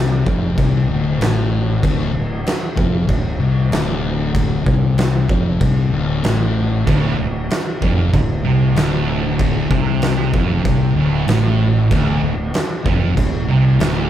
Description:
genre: stoner and doom metal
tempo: 95 BPM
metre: 4/4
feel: straight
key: D minor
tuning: A4 = 440 Hz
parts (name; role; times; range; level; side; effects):
- thick fuzz guitar; riff; 0.0-14.1 s; D2 to C3; -18 LUFS; left 4 dB; distortion
- fuzz fingered electric bass; bass; 0.0-14.1 s; D1 to C2; -22 LUFS; right 1 dB; overdrive
- oversized low-tuned drum kit; drums; 0.3-14.0 s; crash cymbal, kick drum, snare drum; -20 LUFS; right 1 dB; none
- thick fuzz guitar; riff; 6.9-14.1 s; D2 to C3; -19 LUFS; right 6 dB; distortion
room: moderate large studio reverb, RT60 1.3 s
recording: band playing live in one room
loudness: -14 LUFS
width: side -11 dB against mid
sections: 0.0-14.1 A section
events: none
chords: 0.0 Dm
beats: 0.57 1.20 | 1.83 2.46 3.08 3.71 | 4.34 4.97 5.60 6.23 | 6.86 7.49 8.12 8.75 | 9.38 10.01 10.64 11.27 | 11.90 12.53 13.16 13.79

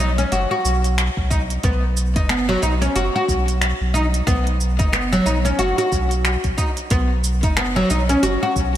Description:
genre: organic downtempo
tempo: 91 BPM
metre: 4/4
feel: swing 59% on 16ths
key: unclear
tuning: A4 = 441 Hz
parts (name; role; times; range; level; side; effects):
- oud; arpeggios; 0.0-8.8 s; F#3 to F#4; -20 LUFS; equal; ping-pong delay
- warm sub bass; bass; 0.0-8.8 s; F#1 to B1; -21 LUFS; equal; sidechain pumping
- organic electronic drum kit; drums; 0.2-8.7 s; finger snaps, hi-hat, shaker; -26 LUFS; equal; none
- electronic kick drum; drums; 1.2-8.7 s; none; -22 LUFS; equal; none
room: moderate lush hall reverb, RT60 2.7 s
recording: bright 1980s-style digital production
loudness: -17 LUFS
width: side -12 dB against mid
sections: 0.0-6.9 A section; 6.9-8.8 B section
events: none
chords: 0.0 F#sus4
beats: 0.32 0.97 | 1.63 2.29 2.95 3.61 | 4.27 4.93 5.59 6.25 | 6.91 7.57 8.23

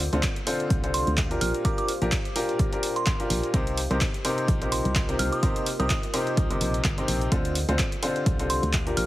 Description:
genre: piano house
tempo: 127 BPM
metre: 4/4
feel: swing 56% on 16ths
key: unclear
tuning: A4 = 440 Hz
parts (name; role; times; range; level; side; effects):
- solid FM bass; bass; 0.0-9.1 s; G1 to D2; -28 LUFS; equal; sidechain pumping
- deep dark ambient pad; texture; 0.0-9.1 s; F4 to F5; -37 LUFS; equal; chorus, built-in reverb, sidechain pumping
- clear upright piano; riff; 0.1-9.1 s; Bb2 to C5; -28 LUFS; left 1 dB; sidechain pumping
- punchy analog drum machine; drums; 0.1-9.1 s; handclaps, hi-hat; -30 LUFS; equal; none
- electronic kick drum; drums; 0.2-8.8 s; none; -26 LUFS; equal; none
- glassy synth bell; melody; 0.9-9.1 s; C6 to F6; -32 LUFS; right 2 dB; chorus, tape echo
room: light reverb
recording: heavily compressed radio sound, multiband compression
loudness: -23 LUFS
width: side -16 dB against mid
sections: 0.0-9.1 A section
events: none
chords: 0.0 Dm7; 1.4 Bb6; 3.5 Cm7; 7.3 Dm7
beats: 0.23 0.70 1.18 | 1.65 2.12 2.59 3.07 | 3.54 4.01 4.48 4.96 | 5.43 5.90 6.37 6.84 | 7.32 7.79 8.26 8.73

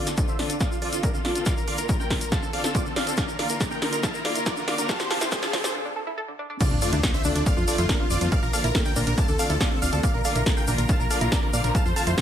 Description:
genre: uplifting trance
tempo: 140 BPM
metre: 4/4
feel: straight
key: unclear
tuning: A4 = 440 Hz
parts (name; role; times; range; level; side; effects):
- big supersaw lead; melody; 0.0-12.2 s; D4 to A5; -29 LUFS; right 1 dB; phaser, sidechain pumping, low-pass filter, ping-pong delay
- warm studio string section; sustained chords; 0.0-12.2 s; D3 to Bb4; -32 LUFS; left 2 dB; sidechain pumping
- riser and sub drop; sound effects; 1.3-8.3 s; none; -34 LUFS; equal; none
- tight sequenced synth; arpeggios; 0.1-12.2 s; D3 to A4; -35 LUFS; right 2 dB; chorus, sidechain pumping, ping-pong delay
- punchy analog drum machine; drums; 0.1-12.2 s; crash cymbal, hi-hat, snare drum; -29 LUFS; equal; sidechain pumping on hats, sidechain pumping on cymbals
- tube shaker; percussion; 0.1-12.2 s; none; -35 LUFS; left 3 dB; none
- electronic kick drum; drums; 0.2-12.2 s; none; -25 LUFS; equal; overdrive
- supersaw stab; second line; 6.6-12.2 s; D4 to A5; -33 LUFS; right 1 dB; sidechain pumping, ping-pong delay
- solid FM bass; bass; 6.7-12.1 s; D1 to Bb2; -26 LUFS; equal; sidechain pumping
room: light reverb, digital ambience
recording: high-pass filter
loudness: -22 LUFS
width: side -10 dB against mid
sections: 0.0-6.6 A section; 6.6-12.2 B section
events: build-up 0.0-6.6; drum fill 0.0-5.7; filter sweep on supersaw synth 0.0-6.6; filter sweep on synth arpeggio sound 0.0-6.6; filter sweep 0.0-6.6; riser 1.3-5.7; break 5.7-6.6; drop 6.6-12.2; impact 6.6-8.3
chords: 0.0 Dm7; 1.5 Bb; 2.3 Dm7; 3.2 Bb; 4.9 Dm7; 7.5 F6; 8.3 Bb; 9.2 Dm7; 10.0 Bb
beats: 0.18 0.60 1.03 | 1.46 1.89 2.32 2.75 | 3.18 3.60 4.03 4.46 | 4.89 5.32 5.75 6.18 | 6.61 7.03 7.46 7.89 | 8.32 8.75 9.18 9.61 | 10.03 10.46 10.89 11.32 | 11.75 12.18

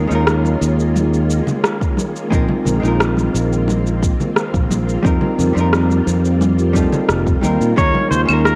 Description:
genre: sunset chillout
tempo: 88 BPM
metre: 4/4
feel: straight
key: unclear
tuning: A4 = 439 Hz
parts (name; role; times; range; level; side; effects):
- vintage hollow-body jazz guitar; accompaniment; 0.0-8.6 s; G3 to Bb4; -23 LUFS; equal; analog delay
- soft string machine; sustained chords; 0.0-8.6 s; Eb3 to F4; -26 LUFS; equal; ensemble chorus
- modern bright fingered electric bass; bass; 0.0-8.6 s; F1 to Bb2; -19 LUFS; equal; none
- electronic cabasa, rim click and claves; drums; 0.1-8.6 s; none; -24 LUFS; equal; none
- congas; percussion; 0.5-8.3 s; none; -25 LUFS; equal; none
- electronic kick drum; drums; 1.8-7.9 s; none; -21 LUFS; equal; none
- pedal steel guitar; melody; 7.8-8.6 s; Bb4 to Db5; -20 LUFS; equal; none
room: moderate spring reverb, RT60 2.0 s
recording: home recording on cassette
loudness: -16 LUFS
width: mono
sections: 0.0-8.6 A section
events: none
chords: 0.0 Eb9sus4; 2.3 Bb9sus4; 5.0 F9sus4; 7.8 Eb9sus4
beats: 0.28 0.96 1.64 | 2.32 3.00 3.68 4.37 | 5.05 5.73 6.41 7.09 | 7.78 8.46

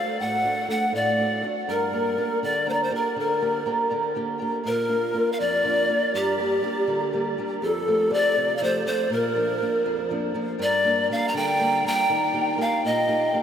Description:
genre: andean folk, Andean ensemble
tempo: 81 BPM (dotted quarters)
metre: 6/8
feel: straight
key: G minor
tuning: A4 = 439 Hz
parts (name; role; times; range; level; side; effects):
- breathy pan flute; melody; 0.0-13.4 s; G4 to Bb5; -24 LUFS; equal; none
- breathy mellow quena; second line; 0.0-13.4 s; G4 to Bb5; -28 LUFS; left 2 dB; none
- charango; accompaniment; 0.0-13.4 s; G4 to Bb5; -32 LUFS; right 2 dB; none
- flamenco guitar; accompaniment; 0.0-13.4 s; F2 to G4; -29 LUFS; right 2 dB; none
room: wet huge ambient reverb, RT60 7.7 s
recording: in a vast, echoing space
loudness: -21 LUFS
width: side -8 dB against mid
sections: 0.0-7.6 A section; 7.6-13.4 B section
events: none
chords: 0.0 D; 1.7 Gm; 4.7 Bb; 6.1 Gm; 7.6 F; 9.1 Bb; 10.6 Gm; 12.1 Eb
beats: | 0.19 0.93 | 1.68 2.42 | 3.17 3.91 | 4.66 5.40 | 6.14 6.89 | 7.63 8.38 | 9.12 9.87 | 10.61 11.36 | 12.10 12.85

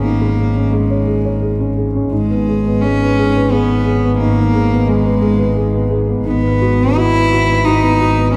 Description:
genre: neoclassical piano and strings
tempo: 87 BPM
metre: 3/4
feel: rubato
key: G# minor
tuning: A4 = 442 Hz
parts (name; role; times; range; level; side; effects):
- clear cello; second line; 0.0-8.4 s; G#3 to E4; -19 LUFS; equal; none
- felt-muted upright piano; accompaniment; 0.0-8.4 s; G#2 to C#5; -20 LUFS; equal; none
- warm double bass; bass; 0.0-8.4 s; G#1; -19 LUFS; equal; none
room: wet cathedral reverb, RT60 6.8 s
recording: dreamy mix soaked in reverb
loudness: -15 LUFS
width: mono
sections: 0.0-8.4 A section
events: none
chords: 0.0 C#5/G#; 2.1 G#m; 6.2 F#sus4/G#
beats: | 0.04 0.73 1.42 | 2.11 2.83 3.51 | 4.19 4.87 5.56 | 6.25 6.96 7.65 | 8.34

